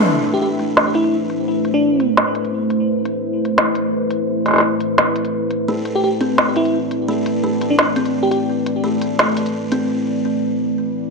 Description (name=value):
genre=half-time drum and bass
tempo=171 BPM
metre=4/4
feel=swing 53% on 16ths, half-time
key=A minor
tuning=A4 = 437 Hz
part: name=deep dark ambient pad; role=sustained chords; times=0.0-11.1 s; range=A3 to D5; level=-20 LUFS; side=equal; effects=chorus, built-in reverb
part: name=buzzing kalimba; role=arpeggios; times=0.0-0.1, 5.7-9.9 s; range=A3 to C4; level=-22 LUFS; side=equal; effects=ping-pong delay
part: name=organic electronic drum kit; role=drums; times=0.2-9.8 s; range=hi-hat, snare drum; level=-17 LUFS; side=equal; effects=low-pass filter on snare, low-pass filter on hats, low-pass filter on toms, low-pass filter on room
part: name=bell-like FM electric piano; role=melody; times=0.3-2.1, 6.0-8.4 s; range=D4 to G4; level=-21 LUFS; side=equal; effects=chorus, ping-pong delay
room=moderate lush hall reverb, RT60 1.7 s, digital ambience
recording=none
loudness=-16 LUFS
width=side -3 dB against mid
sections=0.1-11.1 A section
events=break 9.9-11.1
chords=0.1 Amadd9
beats=| 0.07 0.42 0.77 1.12 | 1.47 1.82 2.17 2.52 | 2.88 3.23 3.58 3.93 | 4.28 4.63 4.98 5.33 | 5.68 6.03 6.38 6.74 | 7.09 7.44 7.79 8.14 | 8.49 8.84 9.19 9.54 | 9.89 10.24 10.60 10.95